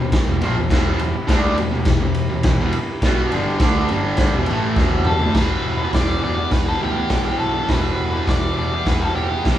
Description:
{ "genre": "garage rock duo or trio", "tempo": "103 BPM", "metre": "4/4", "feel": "straight", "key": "E minor", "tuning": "A4 = 440 Hz", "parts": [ { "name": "combo organ", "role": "sustained chords", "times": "0.0-9.6 s", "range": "E4 to B4", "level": "-32 LUFS", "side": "equal", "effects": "none" }, { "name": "fuzz guitar", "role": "riff", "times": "0.0-9.6 s", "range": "E2 to D4", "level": "-21 LUFS", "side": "right 1 dB", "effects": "distortion" }, { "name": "growling picked electric bass", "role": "bass", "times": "0.0-9.6 s", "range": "E1 to D2", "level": "-25 LUFS", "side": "equal", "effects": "overdrive" }, { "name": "raw garage drum kit", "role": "drums", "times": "0.1-9.6 s", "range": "crash cymbal, hi-hat, kick drum, ride cymbal, snare drum, toms", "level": "-20 LUFS", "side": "equal", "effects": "none" }, { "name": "octave-fuzz lead guitar", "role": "melody", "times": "5.1-9.6 s", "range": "G4 to D5", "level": "-24 LUFS", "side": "left 1 dB", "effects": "distortion" } ], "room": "light reverb", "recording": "band playing live in one room, studio reverb", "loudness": "-16 LUFS", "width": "side -11 dB against mid", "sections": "0.0-5.4 A section; 5.4-9.6 B section", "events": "drum fill 4.8-5.4", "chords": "0.0 Em" }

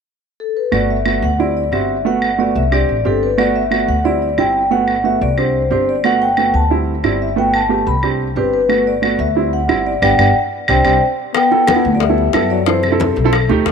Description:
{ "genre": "Afro-Cuban jazz", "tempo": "181 BPM", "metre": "4/4", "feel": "straight", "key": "G major", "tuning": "A4 = 440 Hz", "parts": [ { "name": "vibraphone with medium mallets", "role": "melody", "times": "0.4-13.5 s", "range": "A4 to B5", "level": "-17 LUFS", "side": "left 3 dB", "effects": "none" }, { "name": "warm upright piano", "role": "accompaniment", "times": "0.7-13.7 s", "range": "G3 to A4", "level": "-18 LUFS", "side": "right 8 dB", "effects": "none" }, { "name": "upright bass", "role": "bass", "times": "0.7-13.7 s", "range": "G1 to F#2", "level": "-20 LUFS", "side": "left 1 dB", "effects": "none" }, { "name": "claves", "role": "percussion", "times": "0.7-13.5 s", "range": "none", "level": "-22 LUFS", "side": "right 1 dB", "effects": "none" }, { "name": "breathy trombone", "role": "second line", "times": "11.3-13.3 s", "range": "C3 to B3", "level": "-21 LUFS", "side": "left 12 dB", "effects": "none" }, { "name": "bongos", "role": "percussion", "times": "11.3-13.7 s", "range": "none", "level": "-23 LUFS", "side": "left 14 dB", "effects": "none" }, { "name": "congas", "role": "percussion", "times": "11.4-13.7 s", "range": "none", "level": "-26 LUFS", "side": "left 3 dB", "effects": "none" } ], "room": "moderate echo chamber reverb, RT60 2.6 s", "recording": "1960s-style stereo with parts hard left and right", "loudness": "-13 LUFS", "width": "side -6 dB against mid", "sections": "0.7-11.3 A section; 11.3-13.7 B section", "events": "band accent 10.0-11.3", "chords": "0.0 N.C.; 0.7 Gmaj7; 1.4 D7sus4; 2.1 Gmaj7; 2.7 Csus2; 3.4 Gmaj7; 4.0 D7sus4; 4.7 Gmaj7; 5.4 Csus2; 6.0 Gmaj7; 6.7 D7sus4; 7.4 Gmaj7; 8.0 Csus2; 8.7 Gmaj7; 9.4 D7sus4; 10.0 Gmaj7; 10.7 Csus2; 11.3 G6; 12.7 F#m7b5" }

